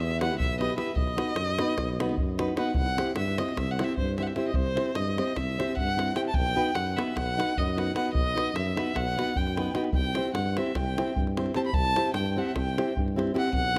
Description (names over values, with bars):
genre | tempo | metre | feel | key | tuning
balkan folk, Balkan wedding band | 300 BPM (eighths) | 9/8 | straight | unclear | A4 = 440 Hz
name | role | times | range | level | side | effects
rich violin | melody | 0.0-13.8 s | C5 to B5 | -33 LUFS | equal | none
mellow tuba | bass | 0.0-13.8 s | B1 to G2 | -34 LUFS | equal | none
davul | percussion | 0.1-13.8 s | none | -34 LUFS | equal | none
nylon-string guitar | accompaniment | 0.2-13.8 s | B3 to C5 | -33 LUFS | equal | none
room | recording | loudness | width
moderate recital hall reverb, RT60 1.8 s | close, detailed microphones | -28 LUFS | mono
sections
0.0-2.7 A section; 2.7-13.8 B section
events
none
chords
0.0 Em; 1.0 B; 2.7 C; 6.3 B; 9.9 C